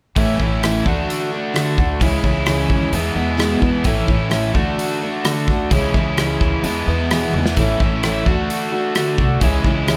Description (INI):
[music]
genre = folk rock and heartland rock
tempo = 130 BPM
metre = 4/4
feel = straight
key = unclear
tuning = A4 = 440 Hz
[part]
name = picked twelve-string acoustic guitar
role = accompaniment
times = 0.2-10.0 s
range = E2 to F#4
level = -23 LUFS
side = equal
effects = none
[part]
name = overdriven electric guitar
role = riff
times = 0.2-10.0 s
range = E2 to F#4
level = -25 LUFS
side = equal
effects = none
[part]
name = upright bass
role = bass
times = 0.2-10.0 s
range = A1 to E2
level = -25 LUFS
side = equal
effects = none
[part]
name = natural country drum kit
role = drums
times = 0.2-10.0 s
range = hi-hat, kick drum, rim click, snare drum, toms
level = -23 LUFS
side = equal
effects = none
[sound]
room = light reverb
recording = none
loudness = -18 LUFS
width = mono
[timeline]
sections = 0.2-10.0 A section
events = drum fill 7.3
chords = 0.2 A; 0.9 D; 2.0 C#m; 2.9 E; 3.9 A; 4.6 D; 5.7 C#m; 6.6 E; 7.6 A; 8.3 D; 9.4 C#m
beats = | 0.16 0.63 1.09 1.55 | 2.01 2.47 2.94 3.40 | 3.86 4.33 4.79 5.25 | 5.71 6.18 6.64 7.10 | 7.57 8.03 8.49 8.95 | 9.41 9.88